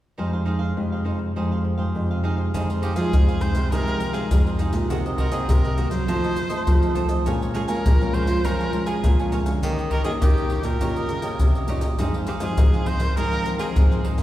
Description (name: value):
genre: samba and choro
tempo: 102 BPM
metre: 4/4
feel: straight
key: F minor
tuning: A4 = 440 Hz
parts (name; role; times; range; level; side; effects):
- cavaquinho; accompaniment; 0.2-14.2 s; Eb4 to Ab5; -31 LUFS; right 2 dB; none
- nylon-string guitar; accompaniment; 0.2-14.2 s; F2 to G4; -28 LUFS; left 1 dB; none
- nylon-string guitar; bass; 0.2-14.2 s; F2 to C4; -26 LUFS; right 1 dB; none
- maracas, surdo and pandeiro; percussion; 2.5-14.2 s; none; -21 LUFS; equal; none
- clear erhu; melody; 2.8-14.0 s; G4 to C5; -30 LUFS; equal; none
room: wet concert hall reverb, RT60 2.3 s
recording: recorded in a church or concert hall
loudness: -20 LUFS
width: side -14 dB against mid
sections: 0.2-2.5 A section; 2.5-14.2 B section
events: none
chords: 0.2 Fm9; 4.9 Cm7b5; 6.1 F7; 7.3 Bbm7; 9.6 Eb7; 12.0 Ab6